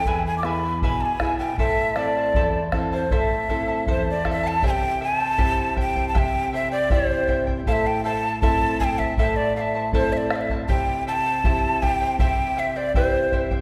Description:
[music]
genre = andean folk, Andean ensemble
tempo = 79 BPM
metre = 2/4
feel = straight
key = A minor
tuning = A4 = 442 Hz
[part]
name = breathy mellow quena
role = melody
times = 0.0-13.5 s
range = C5 to D6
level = -26 LUFS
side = equal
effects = none
[part]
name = charango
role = accompaniment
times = 0.0-13.6 s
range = E4 to A5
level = -30 LUFS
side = equal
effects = none
[part]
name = nylon-string guitar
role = accompaniment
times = 0.0-13.6 s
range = E2 to A4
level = -31 LUFS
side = equal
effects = none
[part]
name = bombo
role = percussion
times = 0.0-13.6 s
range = none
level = -27 LUFS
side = equal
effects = none
[sound]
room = wet scoring stage reverb, RT60 1.9 s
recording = recorded in a church or concert hall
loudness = -22 LUFS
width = mono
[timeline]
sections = 0.0-4.6 A section; 4.6-13.6 B section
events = none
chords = 0.1 E; 1.6 Am; 4.6 C; 7.7 Am; 10.7 C

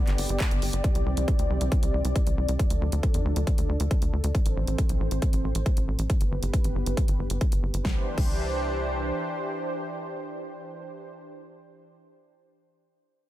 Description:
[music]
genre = uplifting trance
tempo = 137 BPM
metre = 4/4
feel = straight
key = C major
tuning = A4 = 442 Hz
[part]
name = lush unison pad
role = sustained chords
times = 0.0-11.1 s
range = D3 to D5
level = -32 LUFS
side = equal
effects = chorus, sidechain pumping
[part]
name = tight sequencer bass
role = bass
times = 0.1-9.1 s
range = G1 to E2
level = -27 LUFS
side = equal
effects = tube saturation, sidechain pumping
[part]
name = big-room dance drum kit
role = drums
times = 0.1-8.3 s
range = crash cymbal, handclaps, hi-hat, snare drum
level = -36 LUFS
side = equal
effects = sidechain pumping on hats, sidechain pumping on cymbals
[part]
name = electronic kick drum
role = drums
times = 0.4-8.3 s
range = none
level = -25 LUFS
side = equal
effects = none
[sound]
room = little or no reverb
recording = none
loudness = -24 LUFS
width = side -14 dB against mid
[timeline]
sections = 0.0-7.8 A section; 7.8-11.4 B section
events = filter sweep on analog synth pad 0.0-7.8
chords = 0.0 G; 0.8 Cadd9; 2.6 Dm; 4.3 Am; 6.1 G; 7.8 Cadd9

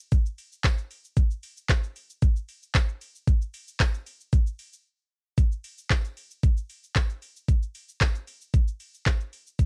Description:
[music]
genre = pop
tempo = 114 BPM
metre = 4/4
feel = straight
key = none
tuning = none
[part]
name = smooth R&B drum kit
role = drums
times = 0.1-9.7 s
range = handclaps, hi-hat, kick drum, shaker, snare drum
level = -25 LUFS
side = equal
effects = cassette tape
[part]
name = tambourine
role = percussion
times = 0.6-9.2 s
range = none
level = -50 LUFS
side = equal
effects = none
[sound]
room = little or no reverb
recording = home recording on cassette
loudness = -27 LUFS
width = mono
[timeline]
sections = 0.0-9.7 A section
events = break 4.9-5.4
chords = none

